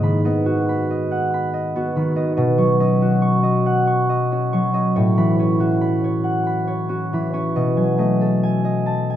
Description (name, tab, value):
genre	classical, solo harp piece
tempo	46 BPM (dotted quarters)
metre	6/8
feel	rubato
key	unclear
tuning	A4 = 440 Hz
part	concert harp	solo	0.0-9.2 s	G#2 to C#6	-17 LUFS	equal	none
room	light reverb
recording	close, detailed microphones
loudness	-17 LUFS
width	side -11 dB against mid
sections	0.0-9.2 A section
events	none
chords	0.0 G#m7; 2.4 Badd9; 5.0 A69; 7.6 B13